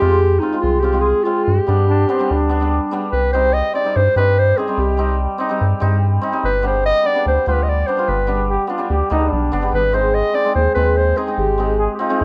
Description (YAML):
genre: klezmer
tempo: 145 BPM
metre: 4/4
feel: straight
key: unclear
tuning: A4 = 440 Hz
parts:
  - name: mellow clarinet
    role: melody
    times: 0.0-11.8 s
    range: Eb4 to Eb5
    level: -20 LUFS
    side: equal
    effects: none
  - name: hammered dulcimer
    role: accompaniment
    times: 0.0-12.2 s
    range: G3 to F4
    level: -23 LUFS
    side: equal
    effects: none
  - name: rubbery square bass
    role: bass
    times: 0.0-12.2 s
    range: G1 to G2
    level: -21 LUFS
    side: equal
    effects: none
  - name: bright trombone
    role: second line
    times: 1.9-3.1, 8.5-12.2 s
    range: C4 to Ab4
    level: -23 LUFS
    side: equal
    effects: none
room: moderate small room reverb, RT60 0.6 s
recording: worn, warbling old tape, cassette tape, warbly pitch drift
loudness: -17 LUFS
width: mono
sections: 0.0-3.1 A section; 3.1-12.2 B section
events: none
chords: 0.0 Fm; 1.5 G; 3.1 Cm; 6.4 G; 9.7 Ab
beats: 0.22 0.64 1.05 | 1.47 1.88 2.30 2.71 | 3.12 3.54 3.95 4.37 | 4.78 5.19 5.60 6.02 | 6.43 6.84 7.25 7.67 | 8.08 8.49 8.90 9.31 | 9.73 10.14 10.55 10.97 | 11.38 11.80 12.21